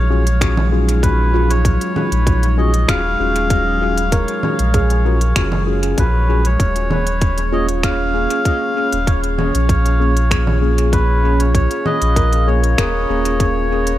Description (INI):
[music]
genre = ambient dub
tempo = 97 BPM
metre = 4/4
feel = straight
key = Eb minor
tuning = A4 = 440 Hz
[part]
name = melodica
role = melody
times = 0.0-14.0 s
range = Cb5 to F5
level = -21 LUFS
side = equal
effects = dub echo
[part]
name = deep dark ambient pad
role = sustained chords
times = 0.0-14.0 s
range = Gb3 to F5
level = -25 LUFS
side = equal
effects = chorus, built-in reverb
[part]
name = warm sub bass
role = bass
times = 0.0-14.0 s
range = Eb1 to Bb1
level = -16 LUFS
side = equal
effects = none
[part]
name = mellow tine electric piano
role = stabs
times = 0.1-13.9 s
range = Bb3 to Ab4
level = -23 LUFS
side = left 2 dB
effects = medium stereo tremolo, dub echo
[part]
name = organic electronic drum kit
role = drums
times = 0.3-14.0 s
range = congas, finger snaps, hi-hat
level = -24 LUFS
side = right 2 dB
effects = dub echo
[part]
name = electronic kick drum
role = drums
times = 0.4-13.5 s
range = none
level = -17 LUFS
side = equal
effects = none
[part]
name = handpan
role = arpeggios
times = 1.3-14.0 s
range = F4 to Bb4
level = -28 LUFS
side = right 5 dB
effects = dub echo
[sound]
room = light reverb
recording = none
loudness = -14 LUFS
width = side -14 dB against mid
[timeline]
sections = 0.0-14.0 A section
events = none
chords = 0.0 Ebm11; 6.6 Bbm7/Eb